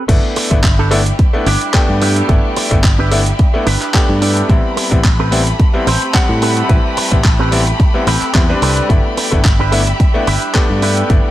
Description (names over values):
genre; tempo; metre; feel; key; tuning
nu-disco, nu disco; 109 BPM; 4/4; swing 54% on 16ths; unclear; A4 = 441 Hz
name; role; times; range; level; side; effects
electric guitar with an envelope filter; riff; 0.0-11.1 s; C4 to F#5; -20 LUFS; right 2 dB; wide subtle chorus, slapback echo
bright concert grand piano; accompaniment; 0.1-11.3 s; G3 to F#5; -18 LUFS; left 1 dB; vintage 12-bit sampler grit, sidechain pumping, slapback echo
warm studio violin section; sustained chords; 0.1-11.3 s; G3 to B5; -23 LUFS; left 1 dB; sidechain pumping
fingered electric bass; bass; 0.1-11.2 s; G1 to A2; -16 LUFS; equal; none
dusty soul sampler-style drum kit; drums; 0.1-11.2 s; crash cymbal, handclaps, hi-hat; -20 LUFS; right 1 dB; overdrive
electronic kick drum; drums; 0.1-11.2 s; none; -12 LUFS; equal; overdrive
room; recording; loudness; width
little or no reverb; none; -11 LUFS; side -14 dB against mid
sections
0.1-11.3 A section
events
drop 0.1-11.3; clean electric guitar fill 3.4-4.5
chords
0.1 G6; 4.5 Am9; 8.9 G6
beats
| 0.09 0.64 1.19 1.74 | 2.29 2.84 3.39 3.94 | 4.49 5.04 5.59 6.14 | 6.70 7.25 7.80 8.35 | 8.90 9.45 10.00 10.55 | 11.10